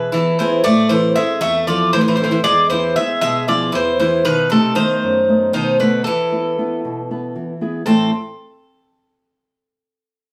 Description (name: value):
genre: greek folk, Greek bouzouki band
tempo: 234 BPM (eighths)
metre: 7/8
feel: straight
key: A harmonic minor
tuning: A4 = 443 Hz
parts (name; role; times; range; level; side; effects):
- Greek bouzouki; melody; 0.0-8.1 s; A4 to E5; -20 LUFS; equal; none
- Greek bouzouki; second line; 0.0-8.1 s; C3 to C4; -23 LUFS; equal; none
- nylon-string guitar; accompaniment; 0.0-8.1 s; E2 to B4; -22 LUFS; equal; none
room: wet studio reverb, RT60 0.6 s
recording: heard from further back in the room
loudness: -17 LUFS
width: mono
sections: 0.0-7.9 A section; 7.9-9.7 B section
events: none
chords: 0.0 E; 0.7 Am; 2.5 E; 4.3 B7; 6.1 E5; 7.9 Am